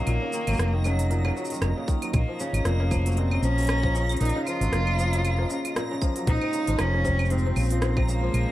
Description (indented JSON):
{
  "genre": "folktronica",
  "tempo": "116 BPM",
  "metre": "4/4",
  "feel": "swing 56% on 16ths",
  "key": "unclear",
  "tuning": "A4 = 440 Hz",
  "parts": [
    { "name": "clear cello", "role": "melody", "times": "0.0-8.5 s", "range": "Gb3 to F4", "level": "-30 LUFS", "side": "right 1 dB", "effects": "tape echo" },
    { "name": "warm analog pad", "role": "sustained chords", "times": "0.0-8.5 s", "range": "Ab3 to Eb5", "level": "-36 LUFS", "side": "right 1 dB", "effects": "chorus" },
    { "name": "kora", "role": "arpeggios", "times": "0.0-8.5 s", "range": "Ab2 to Gb3", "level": "-31 LUFS", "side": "left 1 dB", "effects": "none" },
    { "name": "backwards swelling texture", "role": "texture", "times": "0.0-8.5 s", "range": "Bb5", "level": "-39 LUFS", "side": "equal", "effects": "built-in reverb" },
    { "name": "hollow-body short-scale fingered electric bass", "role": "bass", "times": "0.1-8.4 s", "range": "F1 to Bb1", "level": "-24 LUFS", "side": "equal", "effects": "none" },
    { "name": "organic electronic drum kit", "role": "drums", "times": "0.1-8.5 s", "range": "cabasa, claves, hi-hat, rim click", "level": "-33 LUFS", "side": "right 1 dB", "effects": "overdrive" },
    { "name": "electronic kick drum", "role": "drums", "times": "1.9-8.1 s", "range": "none", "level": "-26 LUFS", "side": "equal", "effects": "overdrive" }
  ],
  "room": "light reverb",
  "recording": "dark, warm production",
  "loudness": "-22 LUFS",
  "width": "side -15 dB against mid",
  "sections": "0.0-8.5 A section",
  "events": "none",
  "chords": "0.0 Ebm7; 6.3 Dbmaj7",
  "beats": "| 0.07 0.59 1.10 1.62 | 2.14 2.65 3.17 3.69 | 4.21 4.72 5.24 5.76 | 6.28 6.79 7.31 7.83 | 8.35"
}